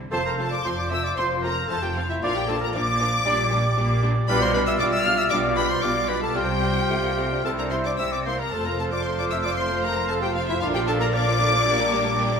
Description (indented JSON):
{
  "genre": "quick classical-period movement for symphony orchestra",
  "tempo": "115 BPM",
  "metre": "4/4",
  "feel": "rubato",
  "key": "F major",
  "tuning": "A4 = 440 Hz",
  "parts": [
    { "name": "clear studio cello section", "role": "bass", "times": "0.0-12.4 s", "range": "F2 to D3", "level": "-32 LUFS", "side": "right 2 dB", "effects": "none" },
    { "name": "rich studio violin section", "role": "melody", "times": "0.1-12.4 s", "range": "E5 to F6", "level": "-28 LUFS", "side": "left 3 dB", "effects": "none" },
    { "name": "clear oboe", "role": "second line", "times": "0.1-12.4 s", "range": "C5 to F5", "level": "-32 LUFS", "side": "right 1 dB", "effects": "none" },
    { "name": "rich studio violin section", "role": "second line", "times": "0.1-12.4 s", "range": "Bb3 to D5", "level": "-35 LUFS", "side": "left 3 dB", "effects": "none" },
    { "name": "silver concert flute", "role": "second line", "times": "0.1-12.4 s", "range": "E5 to F6", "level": "-30 LUFS", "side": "left 1 dB", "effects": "none" },
    { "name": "warm clarinet", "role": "second line", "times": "0.1-12.4 s", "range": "E4 to F5", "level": "-30 LUFS", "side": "left 2 dB", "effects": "none" },
    { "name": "mellow bassoon", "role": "accompaniment", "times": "0.1-12.4 s", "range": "F3 to E4", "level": "-34 LUFS", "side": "left 1 dB", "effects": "none" },
    { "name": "warm studio viola section", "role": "accompaniment", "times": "0.1-12.4 s", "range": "D3 to D4", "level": "-33 LUFS", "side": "right 1 dB", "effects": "none" },
    { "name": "warm French horn section", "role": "sustained chords", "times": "0.1-12.4 s", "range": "F3 to F4", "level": "-33 LUFS", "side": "right 1 dB", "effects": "none" },
    { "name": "mellow trumpet", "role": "stabs", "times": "0.1-12.4 s", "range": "C5 to D5", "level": "-29 LUFS", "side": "right 1 dB", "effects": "none" },
    { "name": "warm studio double bass section", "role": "bass", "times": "0.1-12.4 s", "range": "F1 to C2", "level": "-29 LUFS", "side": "right 1 dB", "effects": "none" }
  ],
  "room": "wet recital hall reverb, RT60 1.5 s",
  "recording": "recorded in a church or concert hall",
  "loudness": "-20 LUFS",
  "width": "side -6 dB against mid",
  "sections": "0.1-12.4 A section",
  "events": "none",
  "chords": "0.1 F; 2.2 Bb; 3.3 Gm/Bb; 4.3 G7/B; 6.4 Csus4; 7.5 C; 8.5 F; 10.6 Bb; 11.7 Gm/Bb",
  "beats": "| 0.12 0.65 1.17 1.70 | 2.23 2.74 3.25 3.77 | 4.29 4.80 5.31 5.83 | 6.36 6.91 7.45 7.99 | 8.53 9.05 9.58 10.10 | 10.62 11.14 11.65 12.17"
}